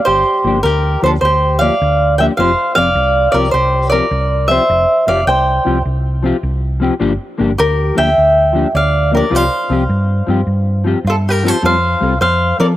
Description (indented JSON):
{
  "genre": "highlife guitar band",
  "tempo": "104 BPM (dotted quarters)",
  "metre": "12/8",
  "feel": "straight",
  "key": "unclear",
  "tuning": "A4 = 438 Hz",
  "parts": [
    { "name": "fingerpicked swing-style acoustic guitar", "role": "melody", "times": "0.0-12.7 s", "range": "F4 to G5", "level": "-13 LUFS", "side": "equal", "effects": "none" },
    { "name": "hollow-body short-scale fingered electric bass", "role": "bass", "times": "0.1-12.8 s", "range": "F1 to F3", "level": "-17 LUFS", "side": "equal", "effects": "none" },
    { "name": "mellow electric guitar", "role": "accompaniment", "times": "0.4-12.7 s", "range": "F3 to A4", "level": "-19 LUFS", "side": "left 3 dB", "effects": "analog chorus" }
  ],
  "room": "light reverb",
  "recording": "none",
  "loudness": "-11 LUFS",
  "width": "side -14 dB against mid",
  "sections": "0.0-11.6 A section; 11.6-12.8 B section",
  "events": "none",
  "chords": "0.0 Gm7; 2.4 Fsus2; 7.0 Gm7; 9.3 Csus4; 11.6 Fadd9"
}